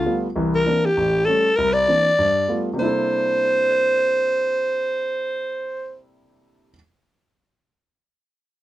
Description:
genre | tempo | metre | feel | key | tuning
jazz | 198 BPM | 4/4 | swing 61% on 8ths | C mixolydian | A4 = 439 Hz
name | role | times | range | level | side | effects
growling alto saxophone | melody | 0.0-6.0 s | F4 to D5 | -18 LUFS | equal | none
warm grand piano | accompaniment | 0.1-6.7 s | A1 to A4 | -24 LUFS | equal | none
room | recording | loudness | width
light reverb | close, detailed microphones | -18 LUFS | side -14 dB against mid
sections
0.0-2.8 A section; 2.8-5.2 B section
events
none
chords
0.4 C9; 1.0 A7; 1.6 C9; 2.2 G9; 2.8 C13

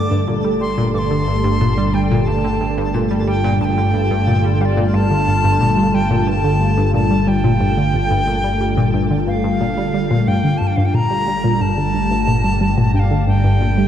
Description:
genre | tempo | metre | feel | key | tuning
ambient, sequencer-driven space music | 90 BPM | 4/4 | straight | G minor | A4 = 440 Hz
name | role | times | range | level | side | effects
bright reedy wooden flute | melody | 0.0-13.9 s | D5 to D6 | -22 LUFS | left 1 dB | shimmer reverb, analog delay
sweeping resonant pad | sustained chords | 0.0-13.9 s | D3 to A4 | -20 LUFS | equal | chorus, shimmer reverb
analog pluck | riff | 0.0-13.9 s | G2 to G3 | -19 LUFS | equal | chorus, analog delay
analog drone | bass | 0.7-13.9 s | G1 | -20 LUFS | equal | chorus
twinkling granular texture | texture | 0.0-10.3 s | A4 | -34 LUFS | equal | built-in reverb, shimmer reverb
room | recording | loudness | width
moderate plate reverb, RT60 2.8 s | dark, warm production | -14 LUFS | side -10 dB against mid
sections
0.0-10.3 A section; 10.3-13.9 B section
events
none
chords
0.0 Gsus2

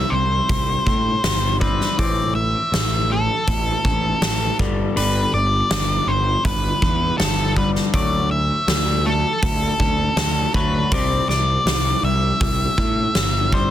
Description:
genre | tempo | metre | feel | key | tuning
quiet-loud alternative rock | 81 BPM | 4/4 | straight | unclear | A4 = 441 Hz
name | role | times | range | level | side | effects
octave-fuzz lead guitar | melody | 0.0-13.7 s | A4 to E5 | -22 LUFS | left 1 dB | distortion, analog delay
twangy electric guitar | arpeggios | 0.0-13.7 s | G2 to C4 | -28 LUFS | left 4 dB | phaser, analog delay
fuzz picked electric bass | bass | 0.0-13.7 s | G1 to A2 | -22 LUFS | equal | overdrive
huge arena drum kit | drums | 0.5-13.7 s | hi-hat, kick drum, snare drum | -22 LUFS | equal | none
room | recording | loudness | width
little or no reverb | dense, heavily limited modern master | -17 LUFS | side -11 dB against mid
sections
0.0-13.7 A section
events
none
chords
0.0 C5; 2.0 Am; 4.6 G; 7.9 Dadd9; 10.9 Cadd9

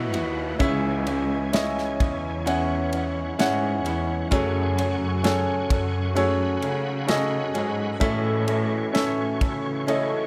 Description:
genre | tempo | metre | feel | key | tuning
pop ballad | 65 BPM | 4/4 | straight | unclear | A4 = 440 Hz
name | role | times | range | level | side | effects
warm grand piano | accompaniment | 0.0-10.3 s | A2 to F#5 | -27 LUFS | equal | dub echo
bright tonewheel organ | sustained chords | 0.0-10.3 s | E4 to C#6 | -38 LUFS | equal | chorus vibrato, fast rotary speaker
nylon-string guitar | arpeggios | 0.0-10.3 s | F#2 to A4 | -34 LUFS | equal | dub echo
muted studio cello section | bass | 0.0-10.3 s | C#2 to C#3 | -30 LUFS | equal | none
downlifter | sound effects | 0.0-4.3 s | none | -46 LUFS | equal | none
modern studio drum kit | drums | 0.1-10.1 s | kick drum, ride cymbal, snare drum | -30 LUFS | equal | dub echo
room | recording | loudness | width
little or no reverb | echo-heavy mix | -24 LUFS | mono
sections
0.0-10.3 A section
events
grand piano fill 9.9-10.3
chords
0.0 Esus2; 0.6 C#m; 4.3 F#madd9; 8.0 A

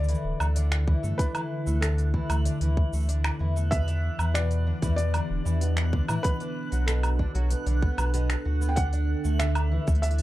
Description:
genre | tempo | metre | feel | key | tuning
folktronica | 95 BPM | 4/4 | straight | D major | A4 = 440 Hz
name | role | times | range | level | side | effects
felt-muted upright piano | melody | 0.0-10.2 s | A4 to G5 | -35 LUFS | equal | digital delay
warbly tape-like pad | sustained chords | 0.0-10.2 s | B2 to A4 | -34 LUFS | right 1 dB | chorus, built-in reverb
fingerpicked twelve-string acoustic guitar | arpeggios | 0.0-10.2 s | B2 to F#4 | -34 LUFS | left 1 dB | none
warm sub bass | bass | 0.0-10.2 s | D1 to A2 | -25 LUFS | equal | none
organic electronic drum kit | drums | 0.0-10.2 s | cabasa, finger snaps, hi-hat, woodblock | -33 LUFS | right 1 dB | none
backwards swelling texture | texture | 0.5-10.2 s | F#6 | -44 LUFS | right 3 dB | built-in reverb
electronic kick drum | drums | 0.9-10.0 s | none | -26 LUFS | equal | none
room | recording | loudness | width
light reverb | dark, warm production | -23 LUFS | side -16 dB against mid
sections
0.0-10.2 A section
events
none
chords
0.0 Dsus2; 3.7 Em7; 6.2 Bm7; 8.8 Dsus2

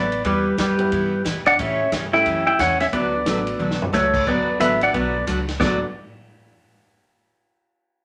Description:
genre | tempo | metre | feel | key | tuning
country, western swing | 179 BPM | 4/4 | swing 62% on 8ths | D major | A4 = 440 Hz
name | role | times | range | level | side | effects
pedal steel guitar | melody | 0.0-5.8 s | G4 to G5 | -22 LUFS | equal | none
hollow-body jazz guitar | second line | 0.0-5.8 s | G3 to E4 | -27 LUFS | equal | none
picked steel-string acoustic guitar | accompaniment | 0.0-5.8 s | C#3 to B4 | -30 LUFS | equal | none
upright bass | bass | 0.0-5.8 s | A1 to A2 | -34 LUFS | equal | none
swinging big-band drum kit | drums | 0.1-5.7 s | crash cymbal, hi-hat, kick drum, ride cymbal, snare drum, toms | -32 LUFS | equal | none
warm upright piano | accompaniment | 0.8-5.8 s | G3 to B4 | -31 LUFS | equal | none
room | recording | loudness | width
wet studio reverb, RT60 0.6 s | none | -20 LUFS | mono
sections
0.0-4.3 A section; 4.3-5.6 B section; 5.6-7.0 C section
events
drum fill 3.6-3.9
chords
0.2 Em; 1.6 A7; 2.9 D6

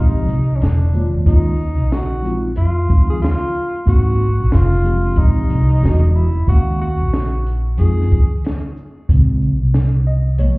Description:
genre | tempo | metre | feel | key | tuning
hip hop, jazz-hop | 92 BPM | 4/4 | swing 61% on 16ths | unclear | A4 = 440 Hz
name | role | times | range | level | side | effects
breathy tenor saxophone | melody | 0.0-8.4 s | Db4 to Ab4 | -24 LUFS | equal | tape echo
mellow tine electric piano | accompaniment | 0.0-10.6 s | Db3 to F5 | -22 LUFS | equal | medium stereo tremolo
upright bass | bass | 0.0-10.6 s | E1 to F2 | -15 LUFS | equal | none
open jazz drum kit | drums | 0.3-10.6 s | hi-hat, kick drum, shaker, snare drum | -17 LUFS | equal | none
room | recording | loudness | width
little or no reverb | heard muffled through a wall, club reverb, EQ | -13 LUFS | side -24 dB against mid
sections
0.0-9.1 A section; 9.1-10.6 B section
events
tine electric piano solo 9.1-10.6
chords
0.0 Bb13; 0.6 E7; 1.3 Eb7sus4; 2.6 Fm7; 3.9 Ab9; 4.5 F5; 5.2 Bb13; 5.8 E9; 6.5 Eb7sus4; 7.8 Fm7; 9.1 Bbm7

